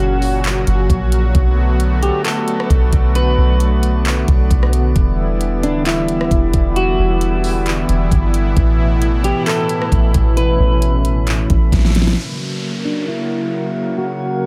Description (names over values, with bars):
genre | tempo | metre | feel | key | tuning
hip hop, atmospheric cloud-rap | 133 BPM | 4/4 | half-time | B minor | A4 = 445 Hz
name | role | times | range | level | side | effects
electric guitar at the edge of break-up | melody | 0.0-14.5 s | D4 to B4 | -24 LUFS | equal | lush chorus, low-pass filter, tape echo
warm analog pad | sustained chords | 0.0-14.5 s | A2 to A#4 | -23 LUFS | equal | chorus, tremolo, sidechain pumping, low-pass filter
soft 808-style bass | bass | 0.0-12.2 s | D1 to B1 | -18 LUFS | equal | none
drifting glass-harmonics texture | texture | 0.0-14.5 s | G3 to D5 | -34 LUFS | equal | chorus, built-in reverb
smooth R&B drum kit | drums | 0.2-12.2 s | handclaps, hi-hat, kick drum, rim click, snare drum | -20 LUFS | equal | none
downlifter | sound effects | 12.2-14.5 s | none | -32 LUFS | equal | none
room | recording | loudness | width
little or no reverb | none | -16 LUFS | mono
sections
0.0-12.2 A section; 12.2-14.5 B section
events
drum fill 11.7-12.2; filter sweep 12.2-14.5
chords
0.0 F#; 1.3 Bm7; 5.0 Em7; 8.6 Asus2; 12.2 F#